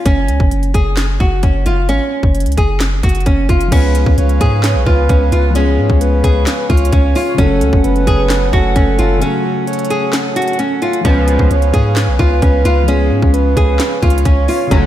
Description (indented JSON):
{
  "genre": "hip hop, trap",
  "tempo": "131 BPM",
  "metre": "4/4",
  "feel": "half-time",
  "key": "unclear",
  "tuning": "A4 = 440 Hz",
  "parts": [
    { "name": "nylon-string guitar", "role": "melody", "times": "0.0-14.9 s", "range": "C#4 to G#4", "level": "-17 LUFS", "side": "equal", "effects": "diffuse ambient delay" },
    { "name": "long sustained 808-style bass", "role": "bass", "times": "0.1-14.9 s", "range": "F#1 to G#2", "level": "-14 LUFS", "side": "equal", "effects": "none" },
    { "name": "trap drum kit", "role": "drums", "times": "0.1-14.8 s", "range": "crash cymbal, handclaps, hi-hat, kick drum, snare drum", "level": "-15 LUFS", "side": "equal", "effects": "none" },
    { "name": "breathy flute-like synth lead", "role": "second line", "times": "3.7-14.9 s", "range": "F#4 to C#5", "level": "-20 LUFS", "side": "right 3 dB", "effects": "chorus, diffuse ambient delay" },
    { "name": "dark concert grand piano", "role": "accompaniment", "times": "3.7-14.9 s", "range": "C#3 to C#4", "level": "-23 LUFS", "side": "left 7 dB", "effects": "none" },
    { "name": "pedal harmonium", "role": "sustained chords", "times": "3.7-14.9 s", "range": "C#3 to F#5", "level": "-23 LUFS", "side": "right 2 dB", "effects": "none" },
    { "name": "sync-sweep polysynth", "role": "stabs", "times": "11.0-11.5, 14.7-14.9 s", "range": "C#2 to F#3", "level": "-23 LUFS", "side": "equal", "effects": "chorus, diffuse ambient delay" }
  ],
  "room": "moderate lush hall reverb, RT60 1.8 s, digital ambience",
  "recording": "dreamy mix soaked in reverb",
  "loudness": "-11 LUFS",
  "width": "side -12 dB against mid",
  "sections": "0.0-3.7 A section; 3.7-14.9 B section",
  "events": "break 9.2-11.0",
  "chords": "0.1 F#5; 3.7 C#7; 7.4 F#m; 11.0 C#7"
}